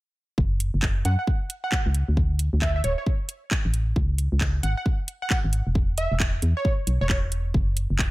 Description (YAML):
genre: UK garage, two-step garage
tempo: 134 BPM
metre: 4/4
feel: swing 62% on 16ths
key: F# minor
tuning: A4 = 440 Hz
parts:
  - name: organ-like FM bass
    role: bass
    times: 0.4-8.1 s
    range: D1 to F#2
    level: -23 LUFS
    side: equal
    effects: none
  - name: electronic kick drum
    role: drums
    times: 0.4-8.1 s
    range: none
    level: -24 LUFS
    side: equal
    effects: none
  - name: house drum kit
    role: drums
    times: 0.6-8.1 s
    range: handclaps, hi-hat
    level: -29 LUFS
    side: right 1 dB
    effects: none
  - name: plucky unison lead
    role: melody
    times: 1.1-7.2 s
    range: C#5 to F#5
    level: -30 LUFS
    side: right 2 dB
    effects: analog delay
room: little or no reverb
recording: none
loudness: -22 LUFS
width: side -19 dB against mid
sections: 0.4-8.1 A section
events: none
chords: 0.4 F#5; 2.2 D5; 4.0 C#5; 5.8 E5; 7.5 F#5